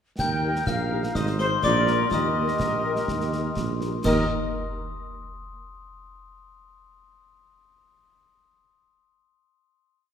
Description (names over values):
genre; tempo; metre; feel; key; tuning
military-style march for wind band; 124 BPM; 2/4; straight; Eb major; A4 = 441 Hz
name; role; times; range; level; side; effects
dark trumpet section; melody; 0.2-4.2 s; C5 to G5; -30 LUFS; right 1 dB; none
clear woodwind section; second line; 0.2-4.2 s; Eb4 to C5; -33 LUFS; left 1 dB; none
glockenspiel with brass mallets; second line; 0.2-4.3 s; C6 to G6; -31 LUFS; left 9 dB; none
mellow large flute ensemble; second line; 0.2-4.3 s; C5 to G5; -32 LUFS; equal; none
mellow tuba; bass; 0.2-4.3 s; Ab1 to Eb2; -27 LUFS; right 3 dB; none
concert snare drum, clash cymbals and concert bass drum; drums; 0.2-4.3 s; none; -32 LUFS; equal; none
mellow French horn section; accompaniment; 0.4-4.3 s; Bb3 to C5; -33 LUFS; left 3 dB; none
room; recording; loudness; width
wet concert hall reverb, RT60 1.9 s; none; -22 LUFS; side -8 dB against mid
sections
0.2-4.0 A section; 4.0-5.0 final chord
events
none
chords
0.2 Eb; 1.2 Ab; 1.6 Bb; 2.1 Eb